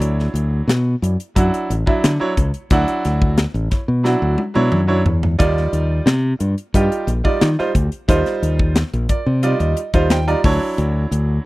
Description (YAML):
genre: electric jazz fusion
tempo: 89 BPM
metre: 4/4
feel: straight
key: unclear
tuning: A4 = 440 Hz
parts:
  - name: bright grand piano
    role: accompaniment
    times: 0.0-11.5 s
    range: F#3 to Bb5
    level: -20 LUFS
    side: right 2 dB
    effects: none
  - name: modern bright fingered electric bass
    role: bass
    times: 0.0-11.4 s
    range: A1 to Eb3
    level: -17 LUFS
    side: equal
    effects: none
  - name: crisp fusion drum kit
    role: drums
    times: 0.0-11.3 s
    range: hi-hat, kick drum, snare drum, toms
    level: -19 LUFS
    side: left 1 dB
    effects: none
room: small room ambience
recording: dry, close 1970s-style studio recording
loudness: -15 LUFS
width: side -19 dB against mid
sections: 0.0-11.5 A section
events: drum fill 4.1-5.4; grand piano fill 8.8-10.8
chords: 0.0 Dmaj9; 5.4 Ebmaj9; 10.4 Dmaj9